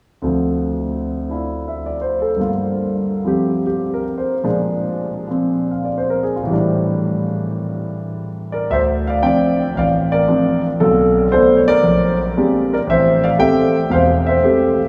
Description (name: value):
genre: solo jazz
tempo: 115 BPM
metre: 4/4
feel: swing 68% on 8ths, rubato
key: D minor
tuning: A4 = 440 Hz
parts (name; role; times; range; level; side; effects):
- warm concert grand piano; solo; 0.2-14.8 s; E1 to G5; -17 LUFS; equal; none
room: wet cathedral reverb, RT60 5.8 s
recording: recorded in a church or concert hall, small room ambience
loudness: -17 LUFS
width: mono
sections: 0.2-8.7 A section; 8.7-14.9 B section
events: none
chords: 0.2 Dm7; 2.4 Gm7; 4.4 Bb7; 6.5 A7sus4; 8.7 Dm7; 10.8 Bm7b5; 11.9 Bb13; 12.9 Am7